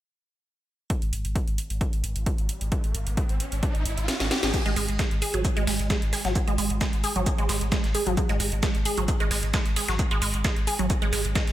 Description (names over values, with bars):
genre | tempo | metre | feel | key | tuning
driving peak-time techno | 132 BPM | 4/4 | straight | unclear | A4 = 440 Hz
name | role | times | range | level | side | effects
electronic kick drum | drums | 0.9-11.5 s | none | -26 LUFS | equal | studio reverb
techno drum kit | drums | 0.9-11.5 s | crash cymbal, hi-hat, snare drum | -31 LUFS | right 1 dB | sidechain pumping on hats, studio reverb, sidechain pumping on cymbals, gated reverb
riser | sound effects | 2.3-4.5 s | none | -35 LUFS | left 2 dB | none
saturated sub bass | bass | 1.0-11.5 s | G#1 | -30 LUFS | equal | tube saturation, sidechain pumping, low-pass filter
dusty soul sampler-style drum kit | drums | 4.5-11.5 s | hi-hat, shaker, snare drum | -34 LUFS | equal | high-pass filter on perc, studio reverb, high-pass filter on hats, high-pass filter on snare, gated reverb
resonant blip pluck | riff | 4.7-11.4 s | F#3 to G#4 | -28 LUFS | right 2 dB | phaser, overdrive, sidechain pumping, digital delay
room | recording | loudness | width
light reverb | bright 1980s-style digital production | -23 LUFS | side -13 dB against mid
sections
0.9-4.5 A section; 4.5-11.5 B section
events
riser 2.3-4.5; kick drops out 4.1-4.5; drum fill 4.1-4.5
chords
0.9 N.C.; 4.5 F#sus2/G#